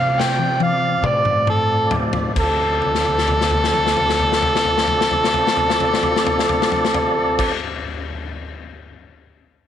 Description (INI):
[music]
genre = slow blues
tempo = 44 BPM (dotted quarters)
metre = 12/8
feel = straight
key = D minor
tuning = A4 = 439 Hz
[part]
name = overdriven harmonica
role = melody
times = 0.0-7.5 s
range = A4 to G5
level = -18 LUFS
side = right 1 dB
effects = none
[part]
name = tonewheel organ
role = sustained chords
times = 0.0-7.5 s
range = C4 to D5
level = -24 LUFS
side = right 1 dB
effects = slow rotary speaker, chorus vibrato
[part]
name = upright bass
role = bass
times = 0.0-7.5 s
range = D2 to C3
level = -26 LUFS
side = right 1 dB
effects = none
[part]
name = raw garage drum kit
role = drums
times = 0.2-7.6 s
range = crash cymbal, kick drum, snare drum, toms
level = -22 LUFS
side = left 5 dB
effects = none
[sound]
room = moderate spring reverb, RT60 2.4 s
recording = 1960s-style stereo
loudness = -16 LUFS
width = side -10 dB against mid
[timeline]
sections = 0.0-2.4 A section; 2.4-7.8 B section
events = drum fill 0.0-2.4, 2.8-7.4; slowing down 0.0-2.4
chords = 0.0 Dm7